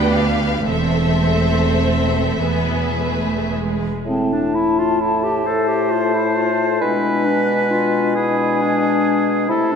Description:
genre	classical, slow romantic movement for symphony orchestra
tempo	34-47 BPM (dotted quarters)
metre	6/8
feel	rubato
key	A minor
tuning	A4 = 440 Hz
part	rich chamber violin section	melody	0.0-3.5 s	E5 to G5	-25 LUFS	left 4 dB	none
part	rich symphonic violin section	second line	0.0-3.8 s	G4 to C5	-25 LUFS	left 2 dB	none
part	clear studio viola section	accompaniment	0.0-4.1 s	G#3 to D4	-22 LUFS	right 2 dB	none
part	rich chamber cello section	bass	0.0-3.8 s	D2 to E2	-24 LUFS	right 2 dB	none
part	rich chamber double bass section	bass	0.0-3.8 s	E1 to D2	-22 LUFS	right 2 dB	none
part	mellow hollow silver concert flute	second line	4.1-9.8 s	G#5 to A5	-24 LUFS	left 1 dB	none
part	warm clarinet	second line	4.1-9.8 s	C4 to A4	-21 LUFS	left 3 dB	none
part	mellow bassoon	accompaniment	4.1-9.8 s	A2 to C3	-22 LUFS	right 1 dB	none
part	mellow French horn section	sustained chords	4.1-9.8 s	G#3 to E4	-22 LUFS	left 4 dB	none
part	clear oboe	second line	5.5-9.8 s	G#4 to C5	-22 LUFS	right 3 dB	none
room	wet concert hall reverb, RT60 2.3 s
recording	dark, warm production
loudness	-16 LUFS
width	side -6 dB against mid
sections	0.0-4.1 A section; 4.1-9.8 B section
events	none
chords	0.0 G7/D; 0.7 Am/E; 2.4 E; 4.1 Am; 6.8 Bm6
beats	| 0.69 2.43 | 4.07 5.46 | 6.82 8.16 | 9.49

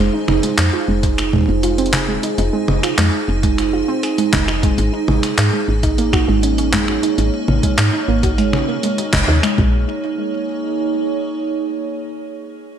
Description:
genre	IDM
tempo	100 BPM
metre	4/4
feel	straight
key	Bb minor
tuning	A4 = 442 Hz
part	icy glass pad	sustained chords	0.0-11.9 s	Bb3 to Db5	-21 LUFS	right 3 dB	chorus, built-in reverb, vintage 12-bit sampler grit
part	warbly dusty pluck	arpeggios	0.0-9.9 s	Ab3 to Ab4	-21 LUFS	right 2 dB	chorus, cassette tape, digital delay
part	woody FM bass	bass	0.0-9.9 s	F1 to Ab2	-19 LUFS	equal	tube saturation
part	jungle sampler-style drum kit	drums	0.3-9.6 s	finger snaps, handclaps, hi-hat, toms	-21 LUFS	equal	gated reverb, ping-pong delay
part	electronic kick drum	drums	1.0-9.7 s	none	-18 LUFS	equal	none
room	light reverb, digital ambience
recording	bright 1980s-style digital production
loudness	-15 LUFS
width	side -9 dB against mid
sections	0.0-9.6 A section; 9.6-12.0 B section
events	band accent 9.1-9.4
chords	0.0 Fm7; 4.8 Ab9sus4; 9.6 Bbm7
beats	0.58 1.18 1.78 | 2.38 2.98 3.58 4.18 | 4.78 5.38 5.98 6.58 | 7.18 7.78 8.38 8.98 | 9.58 10.18 10.78 11.38

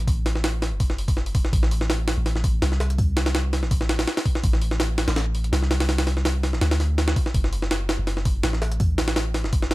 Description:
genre	drum and bass, jungle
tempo	165 BPM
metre	4/4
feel	swing 53% on 16ths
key	unclear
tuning	A4 = 443 Hz
part	long sustained 808-style bass	bass	0.0-9.7 s	E1 to D2	-23 LUFS	equal	none
part	jungle sampler-style drum kit	drums	0.1-9.7 s	hi-hat, kick drum, snare drum	-23 LUFS	equal	none
room	little or no reverb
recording	none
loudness	-20 LUFS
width	side -19 dB against mid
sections	0.0-9.7 A section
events	none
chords	none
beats	| 0.07 0.44 0.80 1.16 | 1.53 1.89 2.25 2.62 | 2.98 3.35 3.71 4.07 | 4.44 4.80 5.16 5.53 | 5.89 6.25 6.62 6.98 | 7.35 7.71 8.07 8.44 | 8.80 9.16 9.53

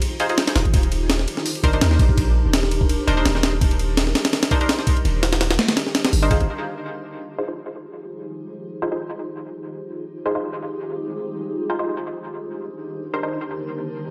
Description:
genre	drum and bass, jungle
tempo	167 BPM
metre	4/4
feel	swing 54% on 16ths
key	F dorian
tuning	A4 = 443 Hz
part	granular cloud pad	sustained chords	0.0-14.1 s	Eb3 to C5	-31 LUFS	equal	built-in reverb, vintage 12-bit sampler grit
part	breakbeat sampler-style drum kit	drums	0.0-6.5 s	hi-hat, kick drum, ride cymbal, snare drum	-22 LUFS	equal	none
part	filtered dub chord stab	stabs	0.2-13.4 s	Eb3 to C5	-29 LUFS	equal	subtle chorus, dub echo
part	long sustained 808-style bass	bass	0.6-6.5 s	Eb1 to Eb2	-22 LUFS	equal	none
room	light reverb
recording	echo-heavy mix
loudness	-21 LUFS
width	mono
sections	0.0-6.5 A section; 6.5-14.1 B section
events	drop 0.0-6.5; filter sweep on ambient pad 6.5-14.1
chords	0.0 Fm7; 0.7 Cm9/Eb; 6.5 Fm7; 12.2 Cm9/Eb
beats	0.02 0.38 | 0.74 1.10 1.46 1.82 | 2.18 2.54 2.89 3.25 | 3.61 3.97 4.33 4.69 | 5.05 5.41 5.77 6.13 | 6.49 6.85 7.21 7.57 | 7.92 8.28 8.64 9.00 | 9.36 9.72 10.08 10.44 | 10.80 11.16 11.52 11.88 | 12.24 12.60 12.95 13.31 | 13.67 14.03

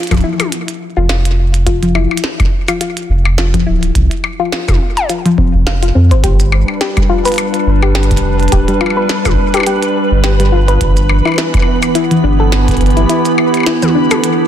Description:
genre	IDM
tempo	105 BPM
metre	4/4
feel	swing 56% on 16ths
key	unclear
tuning	A4 = 440 Hz
part	soft round pluck	arpeggios	0.0-14.2 s	E3 to F5	-17 LUFS	left 3 dB	chorus, digital delay
part	glitchy drum kit	drums	0.0-14.4 s	hi-hat, percussion blips, shaker, snare drum, toms	-19 LUFS	left 2 dB	soft clipping on snare, studio reverb, digital delay
part	warm sub bass	bass	0.1-13.1 s	D1 to F2	-12 LUFS	equal	tube saturation
part	electronic kick drum	drums	0.1-12.8 s	none	-15 LUFS	equal	studio reverb
part	warbly tape-like pad	sustained chords	6.2-14.5 s	E3 to B4	-16 LUFS	right 1 dB	chorus, built-in reverb
part	flickering grainy texture	texture	6.4-14.5 s	B4	-22 LUFS	right 2 dB	built-in reverb
room	light reverb, digital ambience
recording	dense, heavily limited modern master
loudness	-10 LUFS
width	side -10 dB against mid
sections	0.0-14.5 A section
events	none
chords	0.0 F5; 6.2 G7; 10.8 Em7/G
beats	0.52 1.09 | 1.67 2.24 2.81 3.38 | 3.95 4.52 5.09 5.67 | 6.24 6.81 7.38 7.95 | 8.52 9.10 9.67 10.24 | 10.81 11.38 11.95 12.52 | 13.10 13.67 14.24

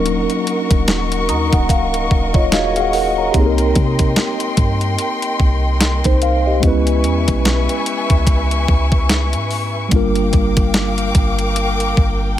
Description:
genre	contemporary R&B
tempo	73 BPM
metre	4/4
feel	swing 58% on 16ths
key	unclear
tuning	A4 = 439 Hz
part	mellow tine electric piano	accompaniment	0.0-12.4 s	Gb3 to Bb5	-19 LUFS	equal	medium stereo tremolo
part	warm studio string section	sustained chords	0.0-12.4 s	Gb4 to D6	-22 LUFS	left 3 dB	none
part	clean 808-style bass	bass	0.0-12.4 s	Db1 to C3	-19 LUFS	equal	none
part	crisp 8-bit digital drum machine	drums	0.1-12.2 s	hi-hat, kick drum, snare drum	-17 LUFS	equal	overdrive
part	soft synth bell	texture	1.3-3.7 s	Eb4 to Ab4	-30 LUFS	left 3 dB	chorus, phaser, digital delay
room	digital ambience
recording	none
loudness	-14 LUFS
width	side -12 dB against mid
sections	0.0-12.4 A section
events	tine electric piano fill 0.9-3.3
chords	0.0 Ebm7; 3.3 Cm7; 6.6 Dbm7; 9.9 Gm7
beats	| 0.06 0.88 1.70 2.52 | 3.34 4.16 4.99 5.81 | 6.63 7.45 8.27 9.10 | 9.92 10.74 11.56 12.38

